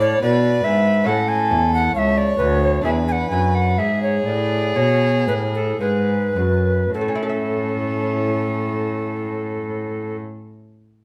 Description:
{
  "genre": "classical, baroque-style sonata movement with continuo",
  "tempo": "52-72 BPM",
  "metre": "4/4",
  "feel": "rubato",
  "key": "A major",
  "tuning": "A4 = 436 Hz",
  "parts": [
    { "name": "alto recorder", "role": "melody", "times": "0.0-10.2 s", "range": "A4 to G#5", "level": "-24 LUFS", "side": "equal", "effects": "none" },
    { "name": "warm violin", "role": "second line", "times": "0.0-10.2 s", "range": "C#4 to D5", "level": "-28 LUFS", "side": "equal", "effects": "none" },
    { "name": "lute", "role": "accompaniment", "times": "0.0-10.5 s", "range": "D2 to E5", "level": "-29 LUFS", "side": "equal", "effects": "none" },
    { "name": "warm cello", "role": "bass", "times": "0.0-10.2 s", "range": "C#2 to B2", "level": "-24 LUFS", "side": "equal", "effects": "none" }
  ],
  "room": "wet stone room reverb, RT60 0.9 s",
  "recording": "none",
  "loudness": "-20 LUFS",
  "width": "mono",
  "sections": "0.0-6.9 A section; 6.9-11.0 B section",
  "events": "slowing down 0.0-6.9",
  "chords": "0.0 E7; 1.1 A; 2.9 E7; 6.9 A"
}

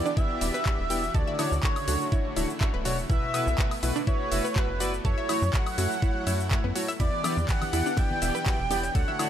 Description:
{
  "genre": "progressive house",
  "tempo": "123 BPM",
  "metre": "4/4",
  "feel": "straight",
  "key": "E dorian",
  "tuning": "A4 = 442 Hz",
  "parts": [
    { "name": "expressive synth lead", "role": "melody", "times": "0.0-9.3 s", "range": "B4 to G5", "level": "-32 LUFS", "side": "equal", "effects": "wide subtle chorus, sidechain pumping, tape echo" },
    { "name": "airy dreamy lead", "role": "second line", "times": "0.0-9.3 s", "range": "B4 to G5", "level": "-39 LUFS", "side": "right 1 dB", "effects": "chorus, sidechain pumping, tape echo" },
    { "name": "supersaw pad", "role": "sustained chords", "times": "0.0-9.3 s", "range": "C#3 to G4", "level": "-36 LUFS", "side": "equal", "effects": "sidechain pumping" },
    { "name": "chorused polysynth", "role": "stabs", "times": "0.0-9.3 s", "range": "B2 to D5", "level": "-32 LUFS", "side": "equal", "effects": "cassette tape, sidechain pumping" },
    { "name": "tight sequencer bass", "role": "bass", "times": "0.0-9.0 s", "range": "D1 to F#2", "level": "-30 LUFS", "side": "equal", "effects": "sidechain pumping" },
    { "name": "analog pluck", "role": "arpeggios", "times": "0.1-9.2 s", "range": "B3 to E5", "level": "-34 LUFS", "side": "right 1 dB", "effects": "chorus, sidechain pumping, tape echo" },
    { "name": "house drum kit", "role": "drums", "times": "0.1-9.3 s", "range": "handclaps, hi-hat, ride cymbal, shaker, woodblock", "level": "-34 LUFS", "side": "left 2 dB", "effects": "overdrive, studio reverb" },
    { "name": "electronic kick drum", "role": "drums", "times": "0.2-9.1 s", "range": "none", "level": "-26 LUFS", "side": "equal", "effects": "studio reverb" },
    { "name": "bongos, congas and cowbell", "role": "percussion", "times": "7.2-9.2 s", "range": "none", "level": "-38 LUFS", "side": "left 4 dB", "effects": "sidechain pumping on perc" }
  ],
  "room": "digital ambience",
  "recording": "none",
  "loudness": "-24 LUFS",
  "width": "side -10 dB against mid",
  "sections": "0.0-9.3 A section",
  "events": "none",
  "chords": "0.0 Em7; 1.1 Dmaj7; 3.1 B7sus4; 5.0 F#m7; 7.0 Em7"
}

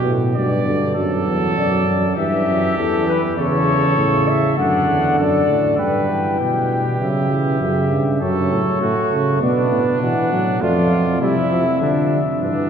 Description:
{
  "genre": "classical, imitative canzona for brass ensemble",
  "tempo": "100 BPM",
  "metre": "4/4",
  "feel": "straight",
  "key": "G major",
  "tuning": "A4 = 440 Hz",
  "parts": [
    { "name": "clear trumpet", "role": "second line", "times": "0.0-12.7 s", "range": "D4 to D5", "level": "-24 LUFS", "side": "right 3 dB", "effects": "none" },
    { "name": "mellow trombone", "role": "accompaniment", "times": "0.0-12.7 s", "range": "A2 to B3", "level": "-21 LUFS", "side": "right 2 dB", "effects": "none" },
    { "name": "mellow bass trombone", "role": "bass", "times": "0.0-12.7 s", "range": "E2 to D3", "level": "-20 LUFS", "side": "right 1 dB", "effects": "none" },
    { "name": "mellow cornet", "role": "melody", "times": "1.6-12.7 s", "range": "A4 to G5", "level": "-21 LUFS", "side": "left 5 dB", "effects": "none" }
  ],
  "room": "wet cathedral reverb, RT60 5.0 s",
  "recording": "heard from further back in the room",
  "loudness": "-15 LUFS",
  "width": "side -7 dB against mid",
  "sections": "0.0-5.8 A section; 5.8-12.7 B section",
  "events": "none",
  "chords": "0.0 G; 1.0 D; 2.2 Em; 3.4 A/E; 4.6 D; 5.8 G; 7.0 C#dim; 8.2 F#m; 9.4 Bm; 10.6 Dm/F"
}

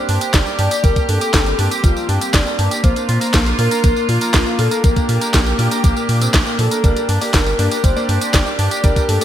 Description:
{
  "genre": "italo disco",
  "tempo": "120 BPM",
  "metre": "4/4",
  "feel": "straight",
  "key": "G minor",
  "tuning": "A4 = 440 Hz",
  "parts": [
    { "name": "soft octave-layered synth lead", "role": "melody", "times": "0.0-9.2 s", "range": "F4 to D5", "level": "-22 LUFS", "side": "left 1 dB", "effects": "chorus, phaser, digital delay" },
    { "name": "warm studio string section", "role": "sustained chords", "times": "0.0-9.2 s", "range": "Bb3 to G4", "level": "-22 LUFS", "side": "right 1 dB", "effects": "none" },
    { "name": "electric guitar with an envelope filter", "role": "arpeggios", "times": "0.0-9.2 s", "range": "F3 to Bb4", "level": "-26 LUFS", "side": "right 1 dB", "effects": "digital delay" },
    { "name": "round analog bass", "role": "bass", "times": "0.1-9.2 s", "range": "G1 to Bb2", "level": "-19 LUFS", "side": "equal", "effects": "tube saturation" },
    { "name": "house drum kit", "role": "drums", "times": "0.1-9.2 s", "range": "handclaps, hi-hat, snare drum, tambourine", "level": "-21 LUFS", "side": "equal", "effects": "none" },
    { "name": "electronic kick drum", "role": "drums", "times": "0.3-9.1 s", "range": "none", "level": "-15 LUFS", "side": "equal", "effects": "none" },
    { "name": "clear electric grand piano", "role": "stabs", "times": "6.8-9.2 s", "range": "Bb3 to D5", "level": "-25 LUFS", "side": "left 1 dB", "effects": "none" }
  ],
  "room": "light reverb",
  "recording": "bright 1980s-style digital production",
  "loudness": "-13 LUFS",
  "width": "side -11 dB against mid",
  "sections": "0.0-9.2 A section",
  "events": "none",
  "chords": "0.0 Gm; 2.8 Bb; 6.8 Gm"
}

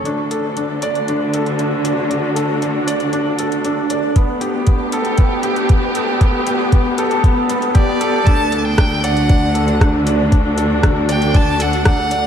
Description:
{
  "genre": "piano and strings electronica",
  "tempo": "117 BPM",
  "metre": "4/4",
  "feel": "straight",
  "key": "D major",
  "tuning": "A4 = 440 Hz",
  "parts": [
    { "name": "warm studio string section", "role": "sustained chords", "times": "0.0-12.3 s", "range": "D3 to A4", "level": "-21 LUFS", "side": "equal", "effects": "none" },
    { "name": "felt-muted upright piano", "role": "riff", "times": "0.0-12.3 s", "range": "B3 to D5", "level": "-19 LUFS", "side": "equal", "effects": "diffuse ambient delay" },
    { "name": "bright studio cello section", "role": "bass", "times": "0.0-12.3 s", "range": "D2", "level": "-23 LUFS", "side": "right 1 dB", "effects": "sidechain pumping, high-pass filter" },
    { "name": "deep house drum kit", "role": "drums", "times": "0.1-12.2 s", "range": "hi-hat, rim click", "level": "-25 LUFS", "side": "equal", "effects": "overdrive" },
    { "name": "electronic kick drum", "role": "drums", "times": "4.2-12.0 s", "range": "none", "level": "-13 LUFS", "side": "equal", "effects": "none" },
    { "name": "clear violin", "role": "melody", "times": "7.8-12.3 s", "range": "D5 to A5", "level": "-21 LUFS", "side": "equal", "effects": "diffuse ambient delay" }
  ],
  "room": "wet lush hall reverb, RT60 1.8 s, small room ambience",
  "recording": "dreamy mix soaked in reverb",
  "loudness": "-14 LUFS",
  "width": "side -8 dB against mid",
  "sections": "0.1-8.3 A section; 8.3-12.3 B section",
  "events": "build-up 0.1-8.3; drop 8.3-12.3",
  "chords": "0.1 D; 4.2 Gadd9/D; 8.3 D"
}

